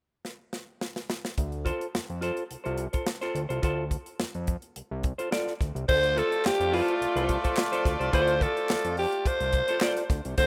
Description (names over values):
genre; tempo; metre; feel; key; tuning
funk; 107 BPM; 4/4; straight; D minor; A4 = 442 Hz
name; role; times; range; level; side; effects
tight funk drum kit; drums; 0.2-10.5 s; crash cymbal, hi-hat, kick drum, snare drum; -33 LUFS; equal; none
fat analog bass; bass; 1.4-10.5 s; C2 to F2; -35 LUFS; equal; none
semi-hollow electric guitar; accompaniment; 1.6-10.0 s; F4 to D5; -34 LUFS; equal; spring reverb
raspy alto saxophone; melody; 5.9-10.5 s; F4 to C5; -28 LUFS; equal; none
warm horn section; second line; 5.9-10.5 s; A3 to D5; -34 LUFS; equal; tape echo
group handclap; percussion; 6.4-9.9 s; none; -38 LUFS; equal; none
room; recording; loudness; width
small room ambience; rough home demo mix; -28 LUFS; mono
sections
0.0-1.4 A section; 1.4-5.9 B section; 5.9-10.5 C section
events
drum fill 0.2-1.4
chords
0.0 N.C.; 1.4 Dm7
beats
0.25 0.81 | 1.38 1.94 2.50 3.07 | 3.63 4.20 4.76 5.32 | 5.88 6.45 7.01 7.57 | 8.13 8.69 9.25 9.81 | 10.38